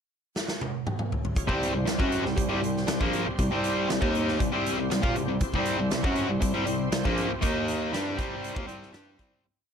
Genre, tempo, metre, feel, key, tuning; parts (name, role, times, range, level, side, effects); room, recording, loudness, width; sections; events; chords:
classic rock; 119 BPM; 4/4; straight; C major; A4 = 438 Hz
big rock drum kit; drums; 0.4-9.3 s; hi-hat, kick drum, snare drum, toms; -30 LUFS; equal
bright tonewheel organ; sustained chords; 1.4-9.4 s; G3 to Db5; -36 LUFS; equal; overdrive, chorus vibrato, slow rotary speaker
sludgy distorted guitar; riff; 1.5-9.4 s; Bb2 to G4; -28 LUFS; equal; overdrive
mellow bass clarinet; bass; 1.5-9.4 s; Bb1 to Bb2; -31 LUFS; equal
light reverb, studio reverb; lossy compression artefacts; -25 LUFS; side -7 dB against mid
0.0-1.4 pickup bar; 1.4-9.5 riff
drum fill 0.3-1.4; fade-out 7.4-9.5
0.0 N.C.; 1.4 C; 7.4 Eb5; 7.9 C